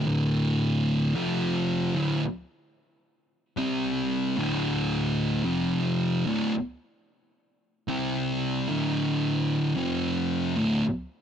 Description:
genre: metal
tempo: 56 BPM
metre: 4/4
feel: straight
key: D minor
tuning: A4 = 440 Hz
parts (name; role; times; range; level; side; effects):
- thick fuzz guitar; solo; 0.0-10.8 s; D2 to C4; -24 LUFS; equal; distortion
room: little or no reverb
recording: dry, close 1970s-style studio recording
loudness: -24 LUFS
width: side -8 dB against mid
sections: 0.0-11.2 A section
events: none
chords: 0.0 Dm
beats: | 0.07 1.15 2.22 3.30 | 4.38 5.45 6.53 7.61 | 8.68 9.76

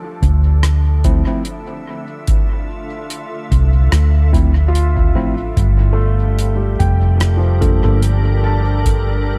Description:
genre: ambient dub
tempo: 73 BPM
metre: 4/4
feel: swing 55% on 16ths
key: G dorian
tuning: A4 = 440 Hz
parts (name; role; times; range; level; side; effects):
- soft additive organ-like pad; sustained chords; 0.0-9.4 s; D3 to E5; -30 LUFS; equal; ensemble chorus, built-in reverb
- felt-muted upright piano; arpeggios; 0.0-9.4 s; F3 to A5; -28 LUFS; equal; dub echo
- hollow-body short-scale fingered electric bass; bass; 0.2-9.4 s; F1 to D2; -16 LUFS; equal; none
- damped 70s drum kit; drums; 0.2-9.0 s; hi-hat, rim click; -28 LUFS; equal; dub echo
- electronic kick drum; drums; 0.2-9.0 s; none; -21 LUFS; equal; none
- tine electric piano; stabs; 1.0-8.0 s; F3 to A4; -27 LUFS; equal; overdrive, dub echo
room: small room reverb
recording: none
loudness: -15 LUFS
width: mono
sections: 0.0-9.4 A section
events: fade-in on ambient pad 0.0-9.4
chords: 0.0 Dm7; 5.6 Gm7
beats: 0.63 1.46 | 2.28 3.10 3.92 4.74 | 5.57 6.39 7.21 8.03 | 8.85

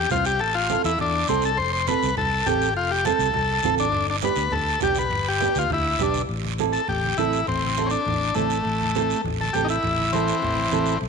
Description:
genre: latin, cumbia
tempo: 204 BPM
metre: 4/4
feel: straight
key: A minor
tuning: A4 = 441 Hz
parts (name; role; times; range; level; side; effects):
- overdriven combo organ; melody; 0.0-11.0 s; E3 to C5; -23 LUFS; left 4 dB; none
- fingered electric bass; bass; 0.0-11.1 s; F1 to E2; -28 LUFS; left 1 dB; none
- nylon-string guitar; accompaniment; 0.1-10.9 s; B3 to C5; -27 LUFS; right 10 dB; none
- congas; percussion; 0.1-11.1 s; none; -34 LUFS; right 5 dB; none
- guiro; percussion; 0.1-11.1 s; none; -33 LUFS; right 13 dB; none
room: moderate echo chamber reverb, RT60 1.9 s, studio reverb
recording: 1960s-style stereo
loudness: -20 LUFS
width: side -5 dB against mid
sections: 0.0-6.3 A section; 6.3-11.1 B section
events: transistor combo organ solo 6.3-11.1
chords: 0.0 Am; 1.6 F; 3.9 G; 6.3 Am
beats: 0.11 | 0.41 0.70 0.99 1.29 | 1.58 1.88 2.17 2.47 | 2.76 3.06 3.35 3.65 | 3.94 4.23 4.53 4.82 | 5.12 5.41 5.71 6.00 | 6.30 6.59 6.89 7.18 | 7.48 7.77 8.07 8.36 | 8.66 8.95 9.25 9.54 | 9.84 10.13 10.43 10.72 | 11.02

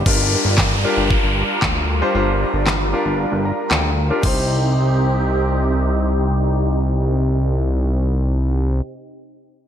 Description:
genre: dance-pop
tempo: 115 BPM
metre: 4/4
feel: straight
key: C minor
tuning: A4 = 441 Hz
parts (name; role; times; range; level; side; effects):
- filtered supersaw swell; sustained chords; 0.0-8.8 s; C3 to Bb4; -24 LUFS; right 1 dB; lush chorus, sidechain pumping, low-pass filter
- fat analog bass; bass; 0.0-8.8 s; G1 to D2; -18 LUFS; equal; sidechain pumping
- clear concert grand piano; accompaniment; 0.1-8.8 s; C4 to Bb5; -24 LUFS; left 2 dB; sidechain pumping, low-pass filter
- pop drum kit; drums; 0.1-4.4 s; crash cymbal, handclaps, kick drum, snare drum; -20 LUFS; equal; gated reverb
- downlifter; sound effects; 0.1-4.2 s; none; -24 LUFS; left 1 dB; none
room: light reverb, digital ambience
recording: bright 1980s-style digital production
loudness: -16 LUFS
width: side -9 dB against mid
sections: 0.1-4.2 A section; 4.2-8.4 B section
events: grand piano fill 3.2-4.2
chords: 0.1 Gm7; 4.2 Cm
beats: | 0.06 0.58 1.10 1.62 | 2.15 2.67 3.19 3.71 | 4.23 4.76 5.28 5.80 | 6.32 6.84 7.36 7.89

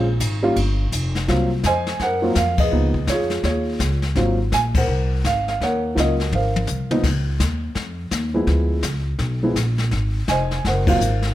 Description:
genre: jazz piano trio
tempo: 167 BPM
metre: 4/4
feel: swing 63% on 8ths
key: Ab mixolydian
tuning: A4 = 440 Hz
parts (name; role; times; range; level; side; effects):
- dark concert grand piano; melody; 0.0-11.3 s; F3 to Ab5; -21 LUFS; right 1 dB; none
- upright bass; bass; 0.0-11.3 s; F1 to Gb2; -21 LUFS; equal; none
- jazz brush drum kit; drums; 0.2-11.3 s; brushed snare drum, crash cymbal, hi-hat, kick drum, ride cymbal, snare drum, toms; -25 LUFS; left 2 dB; none
room: little or no reverb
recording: none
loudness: -18 LUFS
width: side -14 dB against mid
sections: 0.0-1.3 A section; 1.3-11.3 B section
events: grand piano solo 0.0-1.3; band accent 2.5, 4.7, 10.8; drum fill 6.3-7.0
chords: 0.0 Bbm7; 0.6 Fsus2; 1.3 Ab13; 2.7 Db9; 4.2 Ab13; 5.6 Ebm7; 6.3 Ab69; 7.0 Dbadd9; 8.5 Ddim7; 9.9 Ab13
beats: 0.21 0.57 0.93 | 1.28 1.64 2.00 2.36 | 2.72 3.08 3.44 3.80 | 4.16 4.52 4.88 5.24 | 5.60 5.96 6.32 6.68 | 7.04 7.40 7.76 8.12 | 8.48 8.84 9.20 9.56 | 9.92 10.28 10.64 11.00

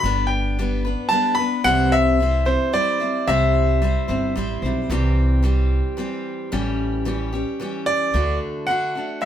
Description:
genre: folk rock and heartland rock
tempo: 111 BPM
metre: 3/4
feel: straight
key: unclear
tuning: A4 = 440 Hz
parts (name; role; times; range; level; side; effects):
- bright concert grand piano; melody; 0.0-4.3, 7.9-9.3 s; C5 to B5; -20 LUFS; left 1 dB; none
- picked steel-string acoustic guitar; accompaniment; 0.0-9.3 s; A2 to C5; -24 LUFS; left 1 dB; none
- upright bass; bass; 0.0-8.4 s; G1 to D2; -21 LUFS; right 1 dB; none
room: light reverb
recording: band playing live in one room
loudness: -18 LUFS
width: side -10 dB against mid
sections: 0.0-4.9 A section; 4.9-8.1 B section; 8.1-9.3 C section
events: none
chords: 0.0 G; 1.7 C; 6.5 A7; 8.1 D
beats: | 0.03 0.57 1.11 | 1.65 2.19 2.73 | 3.27 3.81 4.35 | 4.89 5.43 5.97 | 6.52 7.06 7.60 | 8.14 8.68 9.22

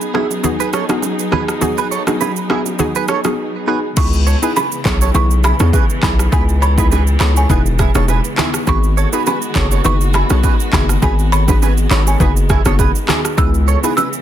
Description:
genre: afrobeats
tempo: 102 BPM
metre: 4/4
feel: swing 55% on 16ths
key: C# minor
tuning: A4 = 440 Hz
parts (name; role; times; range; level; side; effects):
- dark studio string section; sustained chords; 0.0-14.2 s; C#3 to G#4; -24 LUFS; left 1 dB; stereo widening
- afro-pop drum kit; drums; 0.0-14.2 s; crash cymbal, handclaps, kick drum, rim click, shaker; -18 LUFS; equal; none
- hollow square pluck; accompaniment; 0.1-14.0 s; B3 to G#4; -22 LUFS; left 3 dB; chorus
- direct-recorded clean electric guitar; riff; 0.1-14.1 s; E4 to C#5; -22 LUFS; right 10 dB; ensemble chorus, digital delay
- bongos and congas; percussion; 0.1-14.1 s; none; -24 LUFS; right 5 dB; none
- folk marimba with medium mallets; melody; 4.0-14.2 s; G#5 to E6; -22 LUFS; equal; digital delay
- hard-hitting 808-style bass; bass; 4.0-13.8 s; E1 to E2; -14 LUFS; equal; none
room: little or no reverb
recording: dense, heavily limited modern master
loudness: -12 LUFS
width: side -11 dB against mid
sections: 0.0-4.0 A section; 4.0-14.2 B section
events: break 3.4-4.0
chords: 0.0 G#m7; 4.0 C#m7; 8.7 G#m7; 13.4 C#m7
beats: 0.44 1.03 | 1.61 2.20 2.79 3.38 | 3.97 4.56 5.14 5.73 | 6.32 6.91 7.50 8.09 | 8.67 9.26 9.85 10.44 | 11.03 11.62 12.20 12.79 | 13.38 13.97

